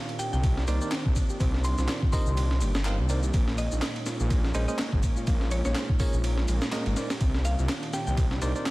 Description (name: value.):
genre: breakbeat, breaks.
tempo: 124 BPM.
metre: 4/4.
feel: swing 57% on 16ths.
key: unclear.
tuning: A4 = 437 Hz.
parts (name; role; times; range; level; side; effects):
mallet-like synth pluck; melody; 0.0-8.1 s; Db5 to C6; -37 LUFS; equal; chorus, AM radio sound, digital delay.
lush unison pad; sustained chords; 0.0-8.7 s; Bb2 to D4; -37 LUFS; equal; chorus, sidechain pumping.
reed electric piano; riff; 0.0-8.7 s; Ab3 to G4; -37 LUFS; right 1 dB; vintage 12-bit sampler grit.
breakbeat sampler-style drum kit; drums; 0.1-8.7 s; hi-hat, kick drum, ride cymbal, snare drum; -28 LUFS; equal; studio reverb.
electronic shaker and handclaps; drums; 0.2-8.7 s; none; -39 LUFS; left 1 dB; overdrive, studio reverb.
detuned saw bass; bass; 0.3-8.5 s; G1 to C2; -26 LUFS; equal; tube saturation.
bell-like tine electric piano; stabs; 0.7-8.6 s; Db4 to F5; -36 LUFS; right 2 dB; fast stereo tremolo, digital delay.
room: light reverb.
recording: dense, heavily limited modern master, vinyl crackle.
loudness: -24 LUFS.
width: side -20 dB against mid.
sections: 0.0-8.7 A section.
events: none.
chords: 0.0 Cm9; 3.3 Bbm7; 7.0 Cm9.